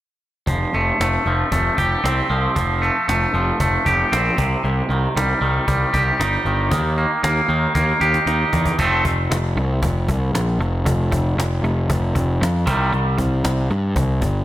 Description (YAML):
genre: quiet-loud alternative rock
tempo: 116 BPM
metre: 4/4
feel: straight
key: unclear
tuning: A4 = 441 Hz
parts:
  - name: twangy electric guitar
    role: arpeggios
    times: 0.5-14.4 s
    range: C3 to G4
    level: -20 LUFS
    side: right 1 dB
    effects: analog delay, slapback echo
  - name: fuzz picked electric bass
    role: bass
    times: 0.5-14.4 s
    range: F1 to G2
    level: -20 LUFS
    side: equal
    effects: overdrive
  - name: cajon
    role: drums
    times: 0.5-14.3 s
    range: none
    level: -26 LUFS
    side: equal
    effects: none
room: moderate lush hall reverb, RT60 1.6 s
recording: big arena sound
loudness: -17 LUFS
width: side -14 dB against mid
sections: 0.5-8.8 A section; 8.8-14.4 B section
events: drum fill 7.8-8.8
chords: 0.5 Fadd9; 4.4 Cm; 6.7 Eb; 8.8 F; 12.7 Cm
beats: | 0.48 1.00 1.52 2.04 | 2.56 3.08 3.60 4.12 | 4.64 5.17 5.68 6.20 | 6.72 7.24 7.76 8.28 | 8.79 9.31 9.83 10.35 | 10.86 11.38 11.90 12.41 | 12.93 13.45 13.96